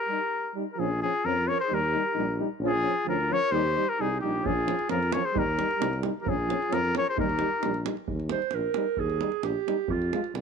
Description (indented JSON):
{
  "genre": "balkan folk, Balkan brass band",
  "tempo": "132 BPM",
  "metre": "2/4",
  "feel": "straight",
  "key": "Eb mixolydian",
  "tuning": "A4 = 440 Hz",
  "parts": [
    { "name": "clear trumpet", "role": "melody", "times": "0.0-7.8 s", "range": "G4 to Db5", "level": "-28 LUFS", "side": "left 4 dB", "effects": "none" },
    { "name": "warm clarinet", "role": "second line", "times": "0.0-10.4 s", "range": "Eb4 to C5", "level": "-32 LUFS", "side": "right 12 dB", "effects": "none" },
    { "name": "clear euphonium", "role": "accompaniment", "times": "0.1-10.2 s", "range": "Db4 to F4", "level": "-35 LUFS", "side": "left 16 dB", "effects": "none" },
    { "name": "warm trombone", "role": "accompaniment", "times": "0.1-10.2 s", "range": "F3 to Ab3", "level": "-35 LUFS", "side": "right 12 dB", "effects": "none" },
    { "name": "mellow tuba", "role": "bass", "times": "0.8-10.4 s", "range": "Bb1 to F2", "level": "-31 LUFS", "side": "left 1 dB", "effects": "none" },
    { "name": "davul", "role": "percussion", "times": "4.5-10.4 s", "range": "none", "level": "-35 LUFS", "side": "right 6 dB", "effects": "none" }
  ],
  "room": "light reverb, small room ambience",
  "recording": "1960s-style stereo with parts hard left and right",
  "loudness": "-25 LUFS",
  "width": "side -6 dB against mid",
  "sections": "0.8-8.1 A section; 8.1-10.4 B section",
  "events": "break 0.0-0.8; clarinet solo 8.1-10.4",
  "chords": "0.0 Eb; 0.8 Bbm; 1.7 Eb; 2.6 Bbm; 3.5 Eb; 4.4 Bbm; 5.3 Eb; 6.3 Bbm; 7.2 Eb; 9.9 Fm"
}